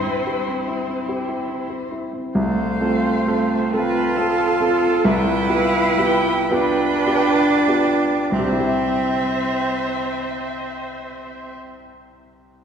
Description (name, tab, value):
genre	classical, slow romantic movement for piano quartet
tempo	31-50 BPM (dotted quarters)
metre	12/8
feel	rubato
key	C major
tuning	A4 = 439 Hz
part	rich violin	melody	0.0-11.6 s	C5 to A5	-29 LUFS	left 4 dB	none
part	rich cello	second line	0.0-11.6 s	A3 to F4	-21 LUFS	right 2 dB	none
part	dark grand piano	accompaniment	0.0-12.6 s	C2 to E5	-22 LUFS	equal	none
part	rich viola	accompaniment	0.0-11.6 s	E4 to C5	-27 LUFS	right 3 dB	none
room	wet concert hall reverb, RT60 2.5 s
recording	heard from further back in the room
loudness	-17 LUFS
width	side -7 dB against mid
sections	0.0-2.4 A section; 2.4-8.3 B section; 8.3-12.6 C section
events	slowing down 0.0-8.3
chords	0.0 C; 2.4 F/C; 5.0 G7/C; 8.3 C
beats	1.09 | 2.36 3.73 5.05 6.52 | 8.33 10.13 11.92